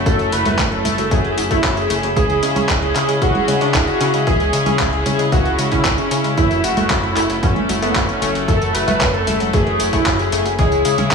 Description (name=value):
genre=italo disco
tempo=114 BPM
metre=4/4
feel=straight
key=F# minor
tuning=A4 = 440 Hz
part: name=bright chamber string section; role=sustained chords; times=0.0-11.1 s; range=F#3 to G#4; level=-22 LUFS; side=equal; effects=none
part: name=chorused synth bass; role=bass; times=0.0-11.1 s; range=F#1 to C#3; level=-22 LUFS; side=left 1 dB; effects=none
part: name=wide unison lead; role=melody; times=0.1-11.1 s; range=B3 to B4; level=-20 LUFS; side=equal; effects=wide subtle chorus, digital delay
part: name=analog pluck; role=arpeggios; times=0.1-11.1 s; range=E3 to E4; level=-26 LUFS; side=left 3 dB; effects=chorus, digital delay
part: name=dusty soul sampler-style drum kit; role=drums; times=0.1-11.1 s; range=congas, handclaps, hi-hat, tambourine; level=-22 LUFS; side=right 1 dB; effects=small room ambience
part: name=electronic kick drum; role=drums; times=0.1-11.1 s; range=none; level=-21 LUFS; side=equal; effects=small room ambience
room=light reverb, digital ambience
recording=studio reverb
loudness=-14 LUFS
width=side -5 dB against mid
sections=0.0-11.1 A section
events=none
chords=0.0 F#m7; 2.2 C#m; 6.4 F#m7; 10.6 C#m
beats=| 0.06 0.59 1.11 1.64 | 2.17 2.69 3.22 3.75 | 4.27 4.80 5.32 5.85 | 6.38 6.90 7.43 7.96 | 8.48 9.01 9.53 10.06 | 10.59 11.11